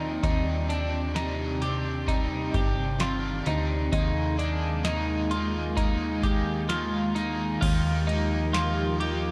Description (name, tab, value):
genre	dream pop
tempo	65 BPM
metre	4/4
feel	straight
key	Eb major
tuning	A4 = 443 Hz
part	overdriven semi-hollow guitar	accompaniment	0.0-9.3 s	Eb3 to Bb4	-36 LUFS	equal	harmonic tremolo, analog chorus
part	ethereal airy pad	sustained chords	0.0-9.3 s	C3 to D5	-34 LUFS	equal	ensemble chorus, built-in reverb
part	twelve-string electric guitar	arpeggios	0.0-9.3 s	D4 to G4	-33 LUFS	equal	lush chorus, digital delay
part	slap-like FM bass	bass	0.0-9.3 s	G1 to Eb2	-33 LUFS	equal	none
part	booming analog drum machine	drums	0.2-9.2 s	crash cymbal, hi-hat, kick drum, ride cymbal, snare drum, tambourine	-31 LUFS	equal	none
room	moderate concert hall reverb, RT60 2.0 s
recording	none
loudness	-27 LUFS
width	mono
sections	0.0-7.6 A section; 7.6-9.3 B section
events	none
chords	0.2 Cmadd9/Eb; 3.9 Absus2/Eb; 7.6 Ebadd9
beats	| 0.23 1.16 2.08 3.00 | 3.93 4.85 5.77 6.70 | 7.62 8.54